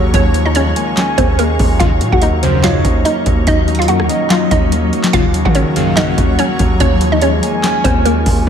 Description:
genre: hip hop, trap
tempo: 144 BPM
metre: 4/4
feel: half-time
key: Eb minor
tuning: A4 = 440 Hz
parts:
  - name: hollow square pluck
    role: melody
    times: 0.0-8.4 s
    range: Bb3 to Gb5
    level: -18 LUFS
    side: equal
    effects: chorus, analog delay
  - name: dark baby grand piano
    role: accompaniment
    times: 0.0-8.5 s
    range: Eb2 to Eb4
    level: -19 LUFS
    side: left 1 dB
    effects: wide subtle chorus
  - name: granular cloud pad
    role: sustained chords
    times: 0.0-8.5 s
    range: Gb3 to Db6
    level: -21 LUFS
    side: left 3 dB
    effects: built-in reverb
  - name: distorted 808-style bass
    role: bass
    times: 0.0-8.5 s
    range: Eb2 to Eb3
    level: -16 LUFS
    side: equal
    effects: distortion
  - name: booming analog drum machine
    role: drums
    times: 0.1-8.5 s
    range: handclaps, hi-hat, kick drum, rim click, snare drum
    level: -16 LUFS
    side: equal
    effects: none
  - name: soft octave-layered synth lead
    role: second line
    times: 0.8-8.4 s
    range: C5 to Ab5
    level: -23 LUFS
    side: right 2 dB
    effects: chorus, analog delay
  - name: big bright polysynth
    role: stabs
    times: 1.8-6.2 s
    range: Bb1 to Db3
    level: -21 LUFS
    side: equal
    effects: chorus, analog delay
room: moderate plate reverb, RT60 1.8 s, digital ambience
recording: dreamy mix soaked in reverb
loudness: -11 LUFS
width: side -8 dB against mid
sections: 0.0-8.5 A section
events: none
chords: 0.1 Db6/Eb; 1.8 Ebm7; 6.8 Db6/Eb

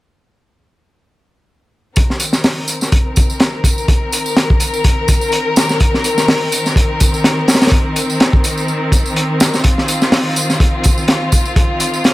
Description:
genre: breakbeat, breaks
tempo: 125 BPM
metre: 4/4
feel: swing 56% on 16ths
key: C minor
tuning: A4 = 440 Hz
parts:
  - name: rich chamber string section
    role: sustained chords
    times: 2.0-12.1 s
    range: Eb3 to Bb4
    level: -18 LUFS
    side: left 1 dB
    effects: sidechain pumping
  - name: crunchy breakbeat drum kit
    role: drums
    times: 2.0-12.1 s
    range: hi-hat, kick drum, snare drum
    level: -13 LUFS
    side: equal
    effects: none
  - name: tambourine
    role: drums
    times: 2.0-12.1 s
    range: none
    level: -22 LUFS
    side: right 1 dB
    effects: none
room: light reverb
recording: none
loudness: -12 LUFS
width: side -17 dB against mid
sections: 2.0-12.1 A section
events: none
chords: 2.0 Cm7

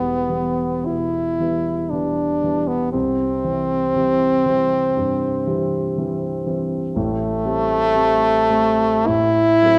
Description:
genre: classical, romantic duo for French horn and grand piano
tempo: 50-61 BPM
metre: 4/4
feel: rubato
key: unclear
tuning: A4 = 441 Hz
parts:
  - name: clear French horn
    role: melody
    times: 0.0-9.8 s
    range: A3 to E4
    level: -21 LUFS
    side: equal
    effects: none
  - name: dark concert grand piano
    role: accompaniment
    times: 0.0-9.8 s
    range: E1 to C4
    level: -25 LUFS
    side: equal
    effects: none
room: wet recital hall reverb, RT60 1.5 s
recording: dark, warm production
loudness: -20 LUFS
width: mono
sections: 0.0-9.8 A section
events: none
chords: 0.0 Em; 2.9 C; 7.0 Am7; 9.1 F#dim/A

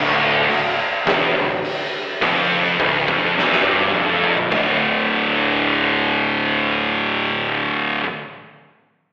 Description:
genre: stoner and doom metal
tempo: 104 BPM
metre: 4/4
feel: straight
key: D minor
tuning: A4 = 439 Hz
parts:
  - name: thick fuzz guitar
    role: riff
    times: 0.0-8.0 s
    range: D2 to D3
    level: -18 LUFS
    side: left 1 dB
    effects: distortion, slapback echo
  - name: thick fuzz guitar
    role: riff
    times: 0.0-8.0 s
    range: D2 to D3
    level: -21 LUFS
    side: right 2 dB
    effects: distortion, slapback echo
  - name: overdriven picked electric bass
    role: bass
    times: 0.0-7.7 s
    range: D1 to Bb1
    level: -31 LUFS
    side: equal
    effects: none
  - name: oversized low-tuned drum kit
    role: drums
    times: 0.5-4.7 s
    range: hi-hat, kick drum, snare drum, splash cymbal, toms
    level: -21 LUFS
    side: equal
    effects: none
room: light reverb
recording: live gig heard through the venue's PA, recital hall reverb, telephone sound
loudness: -15 LUFS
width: side -22 dB against mid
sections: 0.0-4.5 A section; 4.5-6.8 B section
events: drum fill 3.4-4.5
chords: 0.0 Dm; 4.5 D5

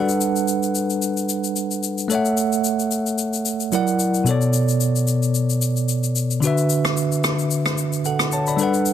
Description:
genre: amapiano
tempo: 111 BPM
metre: 4/4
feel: swing 55% on 16ths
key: D major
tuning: A4 = 443 Hz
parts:
  - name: bell-like tine electric piano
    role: accompaniment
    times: 0.0-8.9 s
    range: B2 to B5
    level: -19 LUFS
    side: moving between left 2 dB and right 5 dB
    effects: auto-pan
  - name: shaker and rim click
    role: drums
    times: 0.1-8.9 s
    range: none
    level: -25 LUFS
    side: left 5 dB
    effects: soft clipping on snare
room: light reverb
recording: dense, heavily limited modern master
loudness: -18 LUFS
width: side -10 dB against mid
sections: 0.0-8.9 A section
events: none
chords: 0.0 Gmaj9; 2.1 F#m7/A; 3.7 F#7b13; 4.3 Bm7; 6.4 D69

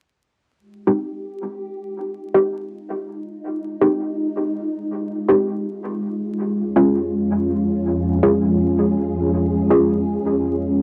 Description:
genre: drum and bass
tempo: free time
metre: none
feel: none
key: F minor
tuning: A4 = 438 Hz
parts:
  - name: soft string machine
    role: sustained chords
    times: 0.6-10.8 s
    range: F2 to Ab4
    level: -24 LUFS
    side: equal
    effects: ensemble chorus, cassette tape
  - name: filtered dub chord stab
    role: stabs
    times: 0.9-10.8 s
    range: Ab3 to Ab4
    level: -22 LUFS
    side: equal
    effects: chorus, cassette tape, dub echo
room: moderate studio reverb, RT60 0.6 s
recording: home recording on cassette, vinyl crackle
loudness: -20 LUFS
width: mono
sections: 0.6-10.8 A section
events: filter sweep on string machine 0.6-10.8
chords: 0.6 Fm9; 6.5 Db/F

